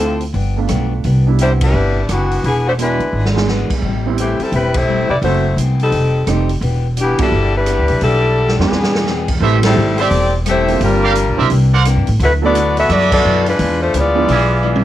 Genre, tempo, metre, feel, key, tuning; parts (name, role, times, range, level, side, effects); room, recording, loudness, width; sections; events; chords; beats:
jazz, big band swing; 172 BPM; 4/4; swing 63% on 8ths; E minor; A4 = 437 Hz
clear saxophone section; melody; 0.0-14.8 s; E3 to E5; -16 LUFS; left 2 dB; cassette tape
clear upright piano; accompaniment; 0.0-14.3 s; F3 to B4; -21 LUFS; right 9 dB; cassette tape, plate reverb
picked steel-string acoustic guitar; accompaniment; 0.0-14.8 s; F#2 to G#4; -25 LUFS; left 10 dB; cassette tape, plate reverb
upright bass; bass; 0.0-14.8 s; E1 to A2; -16 LUFS; equal
swinging big-band drum kit; drums; 0.2-14.8 s; crash cymbal, hi-hat, kick drum, ride cymbal, rim click, snare drum, toms; -22 LUFS; right 1 dB; cassette tape
brilliant trumpet section; stabs; 9.4-14.8 s; F4 to F#5; -18 LUFS; right 7 dB; cassette tape, plate reverb
light reverb; home recording on cassette; -12 LUFS; side -13 dB against mid
0.0-9.4 A section; 9.4-14.8 B section
band accent 1.6, 4.7, 7.1, 9.6, 13.1; drum fill 3.1-3.5, 8.4-9.1, 14.6
0.3 G7; 1.0 Cmaj9; 2.4 E7; 3.8 Am7; 5.2 F#m7b5; 5.9 F9; 6.6 Em7; 8.7 E7b13; 9.4 Am7; 10.8 Gm7; 11.5 C9; 12.2 D69; 13.6 E7b9
0.34 0.69 | 1.04 1.39 1.74 2.09 | 2.44 2.79 3.13 3.48 | 3.83 4.18 4.53 4.88 | 5.23 5.58 5.93 6.28 | 6.62 6.97 7.32 7.67 | 8.02 8.37 8.72 9.07 | 9.41 9.76 10.11 10.46 | 10.81 11.16 11.50 11.85 | 12.20 12.55 12.90 13.24 | 13.59 13.94 14.29 14.64